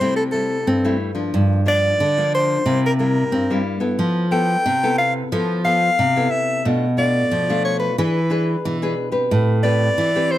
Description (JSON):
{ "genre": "samba and choro", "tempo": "90 BPM", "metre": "4/4", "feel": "straight", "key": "C major", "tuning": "A4 = 440 Hz", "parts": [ { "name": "warm soprano saxophone", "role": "melody", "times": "0.0-10.4 s", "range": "A4 to G5", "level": "-19 LUFS", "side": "left 1 dB", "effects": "none" }, { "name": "nylon-string guitar", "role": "accompaniment", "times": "0.0-10.4 s", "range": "G2 to B4", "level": "-23 LUFS", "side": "left 2 dB", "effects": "none" }, { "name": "nylon-string guitar", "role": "bass", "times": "0.0-10.4 s", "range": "G2 to C4", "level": "-20 LUFS", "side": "right 1 dB", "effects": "none" } ], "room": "light reverb", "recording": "close, detailed microphones", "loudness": "-16 LUFS", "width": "side -13 dB against mid", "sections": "0.0-10.4 A section", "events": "none", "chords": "0.0 C6; 1.3 Gm7; 2.7 C7; 4.0 Fmaj9#11; 6.7 Bm7b5; 8.0 E7; 9.3 Am9" }